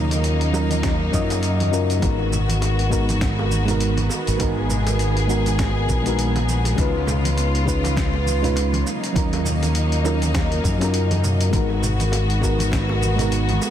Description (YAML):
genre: sunset chillout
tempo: 101 BPM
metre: 4/4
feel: swing 58% on 16ths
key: G# dorian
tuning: A4 = 440 Hz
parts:
  - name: mellow FM electric piano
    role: accompaniment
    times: 0.0-13.7 s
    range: F#3 to D#5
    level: -25 LUFS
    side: moving between left 6 dB and right 7 dB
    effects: chorus, auto-pan, digital delay
  - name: warm studio string section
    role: sustained chords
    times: 0.0-13.7 s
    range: C#3 to G#4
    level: -26 LUFS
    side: left 1 dB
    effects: none
  - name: modern bright fingered electric bass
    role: bass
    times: 0.0-13.6 s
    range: G#1 to F#2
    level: -21 LUFS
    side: equal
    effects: none
  - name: dusty soul sampler-style drum kit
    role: drums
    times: 0.1-13.7 s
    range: hi-hat, shaker, snare drum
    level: -29 LUFS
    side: equal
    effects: none
  - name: congas and bongos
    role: percussion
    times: 0.1-13.7 s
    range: none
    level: -31 LUFS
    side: right 3 dB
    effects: none
  - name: electronic kick drum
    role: drums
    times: 0.8-12.9 s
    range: none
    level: -25 LUFS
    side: equal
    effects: overdrive
room: light reverb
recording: dense, heavily limited modern master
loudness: -18 LUFS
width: side -10 dB against mid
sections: 0.0-13.7 A section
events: none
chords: 0.0 D#m7; 2.0 G#m7; 6.8 C#7; 8.9 D#m7; 11.5 G#m7